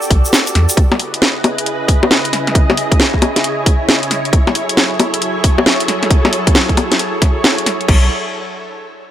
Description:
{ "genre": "UK garage, two-step garage", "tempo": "135 BPM", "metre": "4/4", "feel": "swing 64% on 16ths", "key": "unclear", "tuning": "A4 = 440 Hz", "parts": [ { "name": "soft string machine", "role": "sustained chords", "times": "0.0-8.1 s", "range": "C#3 to D#5", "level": "-19 LUFS", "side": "right 1 dB", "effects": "ensemble chorus, sidechain pumping" }, { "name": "egg shaker", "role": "percussion", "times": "0.0-0.8 s", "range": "none", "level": "-20 LUFS", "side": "equal", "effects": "none" }, { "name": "soft dub sub bass", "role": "bass", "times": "0.1-0.7, 7.9-8.1 s", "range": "B1 to E2", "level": "-13 LUFS", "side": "equal", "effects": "none" }, { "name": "electronic kick drum", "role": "drums", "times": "0.1-8.0 s", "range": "none", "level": "-12 LUFS", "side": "equal", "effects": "none" }, { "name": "garage drum kit", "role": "drums", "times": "0.1-8.0 s", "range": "bongos, crash cymbal, hi-hat, snare drum", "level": "-14 LUFS", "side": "left 1 dB", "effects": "none" } ], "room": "light reverb", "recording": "none", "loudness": "-11 LUFS", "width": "side -11 dB against mid", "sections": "0.0-7.9 A section; 7.9-9.1 B section", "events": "none", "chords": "0.0 Em7; 0.8 C#m7; 4.3 F#m7; 7.9 Bm7", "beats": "0.33 | 0.77 1.22 1.66 2.11 | 2.55 3.00 3.44 3.88 | 4.33 4.77 5.22 5.66 | 6.11 6.55 7.00 7.44 | 7.88" }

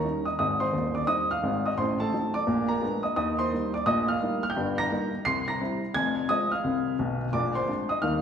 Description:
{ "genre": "jazz, stride piano", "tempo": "173 BPM", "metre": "4/4", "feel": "swing 65% on 8ths", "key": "Eb major", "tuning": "A4 = 440 Hz", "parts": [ { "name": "warm upright piano", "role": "solo", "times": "0.0-8.2 s", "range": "Eb1 to C7", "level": "-24 LUFS", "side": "equal", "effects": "none" } ], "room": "wet recital hall reverb, RT60 1.6 s", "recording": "recorded in a church or concert hall, nothing above 11.0 kHz", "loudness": "-25 LUFS", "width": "side -7 dB against mid", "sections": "0.0-8.2 A section", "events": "none", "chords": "0.4 Abmaj7; 1.8 Adim7; 2.5 Bb7b9; 3.2 Eb; 4.6 Eb/G; 5.3 C7; 5.9 Fm; 7.3 Bb9", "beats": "0.04 | 0.39 0.73 1.08 1.43 | 1.78 2.12 2.47 2.82 | 3.17 3.52 3.86 4.21 | 4.56 4.91 5.25 5.60 | 5.95 6.29 6.64 6.99 | 7.33 7.68 8.03" }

